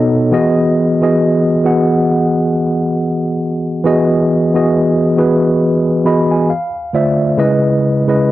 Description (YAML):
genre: R&B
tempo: 68 BPM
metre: 4/4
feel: swing 58% on 16ths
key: unclear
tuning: A4 = 439 Hz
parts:
  - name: mellow tine electric piano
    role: solo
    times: 0.0-8.3 s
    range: B2 to B5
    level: -11 LUFS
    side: equal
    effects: medium stereo tremolo
room: light reverb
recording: home recording on cassette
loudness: -11 LUFS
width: side -15 dB against mid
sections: 0.0-8.3 A section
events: tine electric piano fill 5.6-7.4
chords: 0.3 Emaj7; 6.5 Dm7; 7.4 C#m7